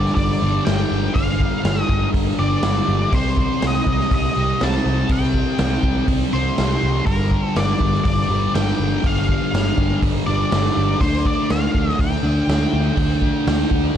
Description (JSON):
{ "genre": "rock, shoegaze and dream pop", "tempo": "122 BPM", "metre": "4/4", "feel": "straight", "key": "unclear", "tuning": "A4 = 441 Hz", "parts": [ { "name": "octave-fuzz lead guitar", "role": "melody", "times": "0.0-14.0 s", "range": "Bb4 to A5", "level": "-25 LUFS", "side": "left 1 dB", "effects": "distortion, analog delay" }, { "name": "thick fuzz guitar", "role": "riff", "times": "0.0-14.0 s", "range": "G2 to D4", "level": "-21 LUFS", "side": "left 1 dB", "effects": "distortion, analog chorus" }, { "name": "vintage muted picked electric bass", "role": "bass", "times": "0.0-13.9 s", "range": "G1 to D2", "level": "-22 LUFS", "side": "equal", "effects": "none" }, { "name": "raw garage drum kit", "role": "drums", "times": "0.1-13.8 s", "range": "hi-hat, kick drum, snare drum", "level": "-22 LUFS", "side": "equal", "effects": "none" } ], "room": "small room ambience", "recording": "dark, warm production", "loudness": "-16 LUFS", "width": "side -9 dB against mid", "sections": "0.0-14.0 A section", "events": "none", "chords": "0.0 G7(no3); 3.1 Cm; 7.1 G7(no3); 11.0 Dsus4" }